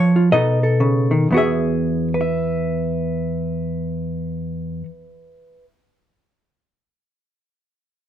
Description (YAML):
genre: solo jazz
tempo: 118 BPM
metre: 4/4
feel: swing 63% on 8ths, rubato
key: E major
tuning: A4 = 440 Hz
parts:
  - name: hollow-body jazz guitar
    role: solo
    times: 0.0-5.7 s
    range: E2 to E5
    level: -17 LUFS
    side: equal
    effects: none
room: wet club reverb, RT60 0.8 s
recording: none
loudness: -18 LUFS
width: side -10 dB against mid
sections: 0.0-1.3 A section; 1.3-5.4 B section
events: slowing down 0.0-1.3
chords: 0.3 B7; 1.3 Eadd9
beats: 0.33 0.80 | 1.30 1.82 2.33 2.85 | 3.35 3.86 4.37 4.89